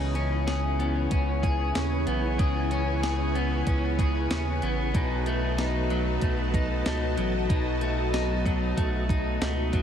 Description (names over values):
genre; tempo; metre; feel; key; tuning
dream pop; 94 BPM; 4/4; straight; C# minor; A4 = 440 Hz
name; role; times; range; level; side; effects
string machine, cellos; sustained chords; 0.0-9.8 s; E4 to A5; -30 LUFS; right 1 dB; ensemble chorus
electric guitar at the edge of break-up; arpeggios; 0.0-9.8 s; B2 to G#4; -30 LUFS; left 3 dB; lush chorus, ping-pong delay
saturated sub bass; bass; 0.0-9.8 s; A1 to D#2; -29 LUFS; equal; none
crisp 8-bit digital drum machine; drums; 0.2-9.8 s; hi-hat, kick drum, snare drum; -28 LUFS; equal; none
room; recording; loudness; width
light reverb; none; -24 LUFS; side -8 dB against mid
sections
0.0-9.8 A section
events
none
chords
0.0 C#m7; 4.9 B7